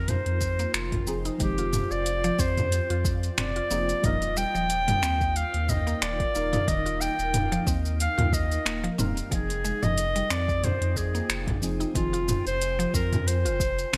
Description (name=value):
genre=organic downtempo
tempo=91 BPM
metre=4/4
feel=swing 55% on 16ths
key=F dorian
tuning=A4 = 441 Hz
part: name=mellow clarinet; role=melody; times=0.0-14.0 s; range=F4 to G5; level=-31 LUFS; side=equal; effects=digital delay, shimmer reverb
part: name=deep mellow chord stab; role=accompaniment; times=0.0-14.0 s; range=F3 to Bb4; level=-38 LUFS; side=equal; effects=chorus, phaser, sidechain pumping, digital delay, shimmer reverb
part: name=granular cloud pad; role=sustained chords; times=0.0-14.0 s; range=Eb4 to Ab5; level=-40 LUFS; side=equal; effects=built-in reverb, analog chorus, sidechain pumping, shimmer reverb
part: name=warm sub bass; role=bass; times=0.0-14.0 s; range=Eb1 to F2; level=-32 LUFS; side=equal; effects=none
part: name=deep house drum kit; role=drums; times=0.1-14.0 s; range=finger snaps, hi-hat, shaker, toms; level=-32 LUFS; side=equal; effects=overdrive, gated reverb
part: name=electronic kick drum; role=drums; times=0.4-13.7 s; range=none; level=-32 LUFS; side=equal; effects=overdrive
part: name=mallet-like synth pluck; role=arpeggios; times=0.6-14.0 s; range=Eb3 to F4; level=-37 LUFS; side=equal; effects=chorus, digital delay, shimmer reverb
room=moderate lush hall reverb, RT60 1.7 s, digital ambience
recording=bright 1980s-style digital production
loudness=-26 LUFS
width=mono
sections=0.0-14.0 A section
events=none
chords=0.0 Fm7; 4.0 Eb; 9.3 Fm7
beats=0.09 0.74 | 1.40 2.06 2.72 3.38 | 4.04 4.70 5.36 6.02 | 6.68 7.34 8.00 8.66 | 9.31 9.97 10.63 11.29 | 11.95 12.61 13.27 13.93